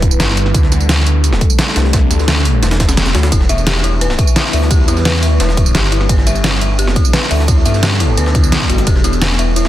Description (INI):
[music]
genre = dark technical drum and bass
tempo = 173 BPM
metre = 4/4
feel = straight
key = E minor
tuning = A4 = 440 Hz
[part]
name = deep dark ambient pad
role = sustained chords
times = 0.0-9.7 s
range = G3 to B4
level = -21 LUFS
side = left 1 dB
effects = chorus, built-in reverb, sidechain pumping
[part]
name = phased detuned saw bass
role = bass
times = 0.0-9.7 s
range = E1 to G2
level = -14 LUFS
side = equal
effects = phaser, overdrive
[part]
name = dubstep drum kit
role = drums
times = 0.0-9.7 s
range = hi-hat, ride cymbal, snare drum, tambourine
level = -17 LUFS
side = equal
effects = none
[part]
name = electronic kick drum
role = drums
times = 0.0-8.9 s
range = none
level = -13 LUFS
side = equal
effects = none
[part]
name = jungle sampler-style drum kit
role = drums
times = 0.0-9.7 s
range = hi-hat, snare drum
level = -24 LUFS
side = equal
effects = overdrive, high-pass filter on hats, high-pass filter on snare
[part]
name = dark detuned synth bell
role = arpeggios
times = 3.3-9.6 s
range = E4 to E5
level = -21 LUFS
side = left 4 dB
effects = chorus, sidechain pumping, dub echo
[sound]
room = little or no reverb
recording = dense, heavily limited modern master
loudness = -10 LUFS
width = side -13 dB against mid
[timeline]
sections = 0.0-9.7 A section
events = none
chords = 0.0 Em; 0.5 Dsus4; 3.3 Em; 6.1 Gadd9; 8.9 Em